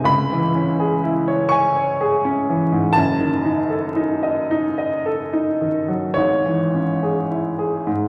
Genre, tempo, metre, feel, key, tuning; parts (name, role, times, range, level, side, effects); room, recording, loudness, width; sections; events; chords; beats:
classical, romantic nocturne for solo piano; 35-43 BPM (dotted quarters); 6/8; rubato; C# minor; A4 = 440 Hz
warm grand piano; solo; 0.0-8.1 s; F#1 to C#6; -20 LUFS; equal
wet recital hall reverb, RT60 1.4 s; vinyl crackle; -20 LUFS; mono
0.0-8.1 A section
0.1 C#m; 3.0 D#dim/F#; 6.2 C#m/G#
| 0.08 1.52 | 2.96 4.51 | 6.17 7.86